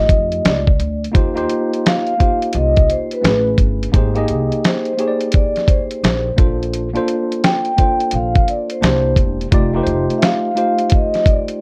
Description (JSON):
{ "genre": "hip hop, jazz-hop", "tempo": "86 BPM", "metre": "4/4", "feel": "swing 64% on 16ths", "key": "Bb major", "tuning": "A4 = 440 Hz", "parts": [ { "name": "vibraphone with soft mallets", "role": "melody", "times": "0.0-11.6 s", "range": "Cb5 to G5", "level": "-21 LUFS", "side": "equal", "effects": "plate reverb" }, { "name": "tine electric piano", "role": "accompaniment", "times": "0.0-11.6 s", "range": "A3 to Eb5", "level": "-23 LUFS", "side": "equal", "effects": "overdrive" }, { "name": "upright bass", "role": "bass", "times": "0.0-10.1 s", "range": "E1 to F2", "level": "-23 LUFS", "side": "equal", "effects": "none" }, { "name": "dusty soul sampler-style drum kit", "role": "drums", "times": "0.1-11.6 s", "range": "hi-hat, kick drum, snare drum", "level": "-18 LUFS", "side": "equal", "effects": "none" } ], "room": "light reverb", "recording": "dark, warm production", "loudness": "-16 LUFS", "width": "mono", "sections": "0.0-11.6 A section", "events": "none", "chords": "0.0 F13; 1.1 Eb69; 3.2 Amaj9; 3.9 Abmaj9; 6.4 Bbmaj9; 8.8 C9; 9.5 F9" }